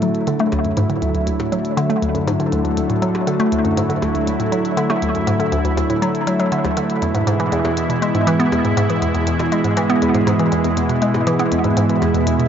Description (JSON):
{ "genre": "ambient, sequencer-driven space music", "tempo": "120 BPM", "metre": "4/4", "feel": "straight", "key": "D lydian", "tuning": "A4 = 440 Hz", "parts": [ { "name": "lush unison pad", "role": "sustained chords", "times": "0.0-12.5 s", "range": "B2 to E4", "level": "-18 LUFS", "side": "equal", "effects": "chorus, shimmer reverb" }, { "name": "hollow square pluck", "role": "riff", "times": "0.0-12.5 s", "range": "D2 to B3", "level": "-19 LUFS", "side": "equal", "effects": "chorus, tape echo, shimmer reverb" }, { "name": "electronic hi-hat and percussion blips", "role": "percussion", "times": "0.0-12.5 s", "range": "none", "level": "-32 LUFS", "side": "left 1 dB", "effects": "tape echo" } ], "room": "wet plate reverb, RT60 2.6 s", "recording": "nothing above 7.6 kHz", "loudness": "-16 LUFS", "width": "side -8 dB against mid", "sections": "0.0-12.5 A section", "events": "none", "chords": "0.0 Dadd9; 7.0 E" }